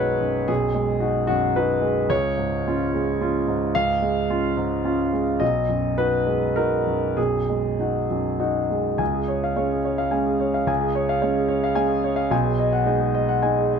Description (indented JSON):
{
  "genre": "neoclassical minimalist piano",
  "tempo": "96-113 BPM",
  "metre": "3/4",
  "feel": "rubato",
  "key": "unclear",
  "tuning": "A4 = 438 Hz",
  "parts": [
    { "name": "clear concert grand piano", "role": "solo", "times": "0.0-13.8 s", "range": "B1 to G#5", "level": "-20 LUFS", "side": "equal", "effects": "none" }
  ],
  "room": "light reverb",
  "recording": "close, detailed microphones",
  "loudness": "-20 LUFS",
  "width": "side -6 dB against mid",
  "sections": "0.0-9.0 A section; 9.0-13.8 B section",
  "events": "none",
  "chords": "0.0 G#m7/B; 2.1 C#; 5.4 G#m7/B; 9.0 C#; 12.3 G#m7/B",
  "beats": "| 0.49 1.02 1.57 | 2.10 2.66 3.21 | 3.75 4.30 4.85 | 5.41 5.97 6.56 | 7.17 7.78 8.39 | 9.00 9.58 10.13 | 10.69 11.23 11.78 | 12.32 12.86 13.43"
}